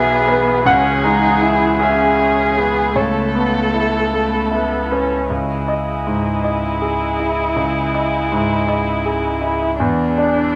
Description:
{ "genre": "neoclassical piano and strings", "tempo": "53 BPM (dotted quarters)", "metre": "6/8", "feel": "rubato", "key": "C# minor", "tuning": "A4 = 437 Hz", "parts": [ { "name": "muted violin", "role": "melody", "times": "0.0-10.6 s", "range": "D4 to A4", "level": "-23 LUFS", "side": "equal", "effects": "none" }, { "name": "clear concert grand piano", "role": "accompaniment", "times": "0.0-10.6 s", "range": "B1 to G#5", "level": "-20 LUFS", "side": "equal", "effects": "none" }, { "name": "muted viola", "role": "accompaniment", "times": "0.0-5.3 s", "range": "A3 to E4", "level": "-23 LUFS", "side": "equal", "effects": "none" }, { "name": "muted chamber string section", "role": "sustained chords", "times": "0.0-10.6 s", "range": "E3 to D#5", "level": "-27 LUFS", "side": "equal", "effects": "none" }, { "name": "punchy sub bass", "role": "bass", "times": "0.0-10.6 s", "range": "E1 to C#2", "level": "-32 LUFS", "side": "equal", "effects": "none" } ], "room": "moderate large studio reverb, RT60 1.1 s", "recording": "none", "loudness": "-17 LUFS", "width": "mono", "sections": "0.0-5.3 A section; 5.3-10.6 B section", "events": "none", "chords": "0.0 E/B; 0.7 C#m; 3.0 Aadd9/C#; 5.3 C#madd9; 9.8 E7" }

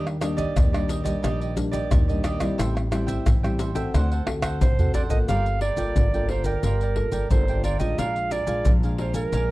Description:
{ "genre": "samba and choro", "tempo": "89 BPM", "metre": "4/4", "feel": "straight", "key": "G minor", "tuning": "A4 = 440 Hz", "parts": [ { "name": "cavaquinho", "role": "accompaniment", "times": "0.0-9.5 s", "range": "D4 to Ab5", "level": "-33 LUFS", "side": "right 5 dB", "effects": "none" }, { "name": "nylon-string guitar", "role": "accompaniment", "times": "0.0-9.5 s", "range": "A2 to A4", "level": "-29 LUFS", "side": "left 1 dB", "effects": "none" }, { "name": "upright bass", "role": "bass", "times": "0.0-9.5 s", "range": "G1 to Eb2", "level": "-26 LUFS", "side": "equal", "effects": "none" }, { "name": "maracas, pandeiro, tamborim and surdo", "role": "percussion", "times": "0.1-9.5 s", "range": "none", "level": "-24 LUFS", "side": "equal", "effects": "none" }, { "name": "clear clarinet", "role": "melody", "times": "4.6-9.5 s", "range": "Bb4 to F5", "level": "-27 LUFS", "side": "right 3 dB", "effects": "none" } ], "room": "studio reverb", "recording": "dry, close 1970s-style studio recording", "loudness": "-21 LUFS", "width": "side -18 dB against mid", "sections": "0.0-5.3 A section; 5.3-9.5 B section", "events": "drum fill 4.3-5.3", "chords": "0.0 Ebmaj7; 2.6 Am7; 3.9 D7; 5.3 Gm9; 8.0 Bb7" }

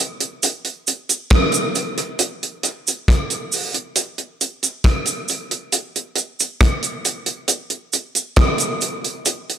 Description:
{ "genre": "reggae", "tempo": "68 BPM", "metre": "4/4", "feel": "straight", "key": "none", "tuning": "none", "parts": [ { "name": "damped 70s drum kit", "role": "drums", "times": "0.0-9.6 s", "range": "hi-hat, kick drum, rim click", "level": "-18 LUFS", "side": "equal", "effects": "none" }, { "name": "cabasa", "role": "percussion", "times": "0.4-9.5 s", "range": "none", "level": "-21 LUFS", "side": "right 4 dB", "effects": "none" } ], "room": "wet echo chamber reverb, RT60 2.2 s", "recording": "dark, warm production", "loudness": "-18 LUFS", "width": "side -10 dB against mid", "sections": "0.0-9.6 A section", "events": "none", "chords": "none" }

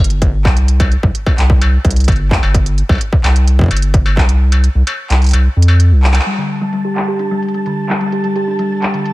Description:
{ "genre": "IDM", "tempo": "129 BPM", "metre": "4/4", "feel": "straight", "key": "unclear", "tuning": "A4 = 440 Hz", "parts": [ { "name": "round analog bass", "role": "bass", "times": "0.0-6.2 s", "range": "G1 to F2", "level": "-11 LUFS", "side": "equal", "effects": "none" }, { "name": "industrial drum kit", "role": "drums", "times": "0.0-9.1 s", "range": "handclaps, hi-hat, struck metal", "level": "-20 LUFS", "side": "equal", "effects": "low-pass filter on snare, low-pass filter on hats, low-pass filter on perc, low-pass filter on room, dub echo" }, { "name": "electronic kick drum", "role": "drums", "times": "0.2-4.3 s", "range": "none", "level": "-13 LUFS", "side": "equal", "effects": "distortion" }, { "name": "buzzing kalimba", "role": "arpeggios", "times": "6.3-9.0 s", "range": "D3 to G4", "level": "-16 LUFS", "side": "equal", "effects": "low-pass filter, dub echo" }, { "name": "flickering grainy texture", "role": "texture", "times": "6.5-9.1 s", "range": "A5", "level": "-26 LUFS", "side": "right 2 dB", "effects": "built-in reverb" } ], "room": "digital ambience", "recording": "none", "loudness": "-11 LUFS", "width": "side -18 dB against mid", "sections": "0.0-6.3 A section; 6.3-9.1 B section", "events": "kick drops out 4.4-6.3; band accent 6.1; filter sweep on kalimba 6.3-9.1", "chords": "0.0 C5; 6.3 Gsus2" }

